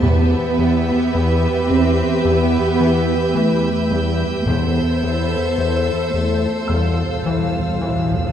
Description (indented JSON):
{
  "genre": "cinematic",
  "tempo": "54 BPM",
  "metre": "4/4",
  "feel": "straight",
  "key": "unclear",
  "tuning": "A4 = 440 Hz",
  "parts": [
    { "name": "warm studio violin section", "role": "melody", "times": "0.0-8.3 s", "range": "E5 to F5", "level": "-32 LUFS", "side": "left 1 dB", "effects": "none" },
    { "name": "warm studio violin section", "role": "second line", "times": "0.0-8.3 s", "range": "B4 to C5", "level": "-28 LUFS", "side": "right 1 dB", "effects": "none" },
    { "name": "dark studio viola section", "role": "accompaniment", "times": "0.0-8.3 s", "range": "G4 to A4", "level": "-29 LUFS", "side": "right 2 dB", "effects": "none" },
    { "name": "mellow French horn section", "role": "sustained chords", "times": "0.0-8.3 s", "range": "G4 to F5", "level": "-24 LUFS", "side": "left 4 dB", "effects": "none" },
    { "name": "soft additive organ-like pad", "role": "sustained chords", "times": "0.0-8.3 s", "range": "G4 to C6", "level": "-30 LUFS", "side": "equal", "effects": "ensemble chorus, built-in reverb" },
    { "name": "gritty driven synth bass", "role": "riff", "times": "0.0-8.1 s", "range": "E2 to E3", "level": "-21 LUFS", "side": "left 2 dB", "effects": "none" },
    { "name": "dark studio cello section", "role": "bass", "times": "0.0-8.3 s", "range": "G3 to C4", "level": "-22 LUFS", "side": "right 2 dB", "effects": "none" },
    { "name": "dark studio double bass section", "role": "bass", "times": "0.0-8.3 s", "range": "E2", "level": "-25 LUFS", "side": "right 5 dB", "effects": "none" },
    { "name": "timpani", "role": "percussion", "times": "0.0-8.3 s", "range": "E2", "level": "-24 LUFS", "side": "equal", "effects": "none" },
    { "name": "felt-muted upright piano", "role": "texture", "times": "0.0-8.3 s", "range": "E6 to G6", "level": "-35 LUFS", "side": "equal", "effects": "none" },
    { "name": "warm studio violin section", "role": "texture", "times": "0.0-8.3 s", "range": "E6 to G6", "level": "-32 LUFS", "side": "right 2 dB", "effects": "none" }
  ],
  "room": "moderate recital hall reverb, RT60 1.4 s",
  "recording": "dark, warm production",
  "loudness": "-16 LUFS",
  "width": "side -9 dB against mid",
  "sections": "0.0-8.3 A section",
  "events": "timpani fill 6.7-8.3",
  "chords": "0.0 Amadd9/E; 6.7 Fadd9/E",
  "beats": "| 0.02 1.13 2.24 3.35 | 4.46 5.57 6.69 7.80"
}